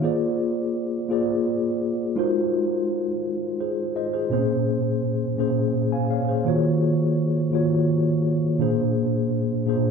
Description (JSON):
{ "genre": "R&B", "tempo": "56 BPM (dotted quarters)", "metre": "6/8", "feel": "straight", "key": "unclear", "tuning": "A4 = 441 Hz", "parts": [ { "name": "mellow tine electric piano", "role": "solo", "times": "0.0-9.9 s", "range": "Bb2 to Ab5", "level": "-21 LUFS", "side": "equal", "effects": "medium stereo tremolo" } ], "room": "wet large studio reverb, RT60 1.4 s", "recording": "band playing live in one room", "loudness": "-21 LUFS", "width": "side -5 dB against mid", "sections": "0.0-9.9 A section", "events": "none", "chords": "0.0 Bb7; 2.2 Ab13; 4.3 Bbm9; 6.4 Ebm7; 8.6 Bb7", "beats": "| 0.02 1.09 | 2.16 3.23 | 4.30 5.37 | 6.44 7.52 | 8.59 9.66" }